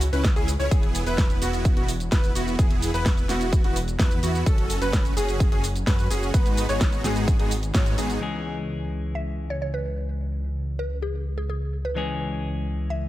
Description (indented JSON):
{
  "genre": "EDM, festival progressive house",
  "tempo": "128 BPM",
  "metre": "4/4",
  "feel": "straight",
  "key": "C# minor",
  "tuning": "A4 = 440 Hz",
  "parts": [
    { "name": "wide detuned saw bass", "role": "bass", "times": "0.0-13.1 s", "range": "E1 to G#2", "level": "-28 LUFS", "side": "equal", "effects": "chorus, sidechain pumping" },
    { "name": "pop drum kit", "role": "drums", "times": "0.0-8.2 s", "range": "hi-hat, shaker, snare drum", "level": "-31 LUFS", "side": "equal", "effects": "low-pass filter on hats, low-pass filter on perc, low-pass filter on snare" },
    { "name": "clear concert grand piano", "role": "arpeggios", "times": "0.1-8.2 s", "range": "F#4 to C#5", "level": "-31 LUFS", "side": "left 1 dB", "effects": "sidechain pumping, tape echo" },
    { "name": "supersaw chords", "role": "riff", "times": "0.1-8.2 s", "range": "G#3 to C#5", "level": "-29 LUFS", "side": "right 1 dB", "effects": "analog chorus, sidechain pumping, tape echo" },
    { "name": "electronic kick drum", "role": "drums", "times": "0.2-7.8 s", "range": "none", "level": "-21 LUFS", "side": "equal", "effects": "none" },
    { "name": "clean electric guitar", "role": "accompaniment", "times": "8.2-13.1 s", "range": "E3 to G#4", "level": "-32 LUFS", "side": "left 4 dB", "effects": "sidechain pumping" },
    { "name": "mallet-like synth pluck", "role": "melody", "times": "9.2-13.1 s", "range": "G#4 to E5", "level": "-33 LUFS", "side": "equal", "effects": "chorus, phaser, tape echo" }
  ],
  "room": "little or no reverb",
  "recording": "none",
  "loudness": "-22 LUFS",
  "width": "side -15 dB against mid",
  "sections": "0.0-8.2 A section; 8.2-13.1 B section",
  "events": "drop 0.0-8.2; band accent 7.7",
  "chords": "0.0 C#m; 0.7 E; 4.5 F#m; 6.3 G#m7; 8.2 C#m"
}